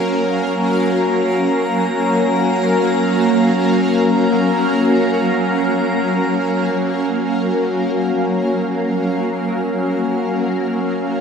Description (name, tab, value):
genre	ambient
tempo	free time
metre	none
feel	none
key	F# major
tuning	A4 = 439 Hz
part	shimmering ambient pad	sustained chords	0.0-11.2 s	F#3 to E#5	-17 LUFS	equal	chorus, built-in reverb, phaser, shimmer reverb
part	hand-pumped harmonium	drone	0.0-11.2 s	F#3 to C#4	-21 LUFS	equal	none
part	drifting glass-harmonics texture	texture	0.0-11.2 s	A#4 to A#5	-24 LUFS	left 1 dB	chorus, built-in reverb, shimmer reverb
part	clean electric guitar	arpeggios	9.5-11.2 s	A#4	-37 LUFS	right 2 dB	none
room	wet huge ambient reverb, RT60 8.1 s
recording	dark, warm production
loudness	-15 LUFS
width	side -6 dB against mid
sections	0.0-6.7 A section; 6.7-11.2 B section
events	none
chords	0.0 F#maj7